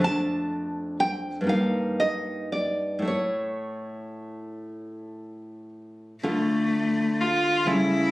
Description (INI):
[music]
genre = romantic duo for cello and classical guitar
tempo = 36-44 BPM (dotted quarters)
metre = 6/8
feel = rubato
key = D minor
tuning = A4 = 442 Hz
[part]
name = nylon-string guitar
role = accompaniment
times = 0.0-8.1 s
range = F2 to A5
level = -26 LUFS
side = equal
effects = none
[part]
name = warm cello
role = melody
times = 6.2-8.1 s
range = A3 to F4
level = -23 LUFS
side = left 1 dB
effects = none
[sound]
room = moderate studio reverb, RT60 0.6 s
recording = recorded on a phone in the room, studio reverb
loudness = -23 LUFS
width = side -18 dB against mid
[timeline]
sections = 0.0-6.2 A section; 6.2-8.1 B section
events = none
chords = 0.0 Dm/F; 1.5 Eb/G; 3.1 A; 6.2 Dm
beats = | 0.04 1.49 | 3.08 4.68 | 6.24 7.67